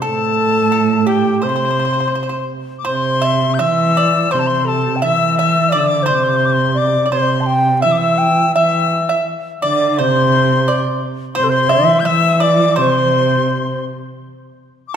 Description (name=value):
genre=chinese traditional, Chinese chamber ensemble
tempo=85 BPM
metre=2/4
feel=rubato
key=C gong mode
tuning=A4 = 440 Hz
part: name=bright reedy low xiao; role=melody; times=0.0-13.8 s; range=G4 to A5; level=-18 LUFS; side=left 1 dB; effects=none
part: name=bright reedy dizi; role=second line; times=0.0-15.0 s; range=G5 to G6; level=-19 LUFS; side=left 8 dB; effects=none
part: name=dark cello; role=second line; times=0.0-13.9 s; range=A2 to E3+22c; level=-18 LUFS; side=right 3 dB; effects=none
part: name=pipa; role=second line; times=0.0-13.8 s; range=G4 to E5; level=-21 LUFS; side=right 4 dB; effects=none
room=moderate concert hall reverb, RT60 2.3 s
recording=minimal, uncompressed stereo recording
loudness=-13 LUFS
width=side -8 dB against mid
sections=0.0-2.9 A section; 2.9-14.2 B section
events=none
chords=none